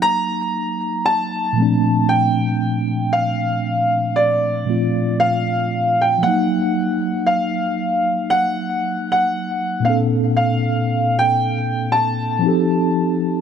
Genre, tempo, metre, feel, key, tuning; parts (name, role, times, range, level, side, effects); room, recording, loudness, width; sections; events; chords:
R&B; 58 BPM; 4/4; swing 58% on 16ths; Bb major; A4 = 439 Hz
warm concert grand piano; melody; 0.0-13.4 s; D5 to Bb5; -19 LUFS; equal; ping-pong delay
mellow tine electric piano; accompaniment; 0.0-13.4 s; Bb2 to A4; -19 LUFS; equal; medium stereo tremolo
light reverb, small room ambience; -16 LUFS; side -8 dB against mid
0.0-13.4 A section
0.0 Ebm; 1.6 Bbmaj9; 6.2 Ebm; 9.8 Bbmaj9; 12.4 F9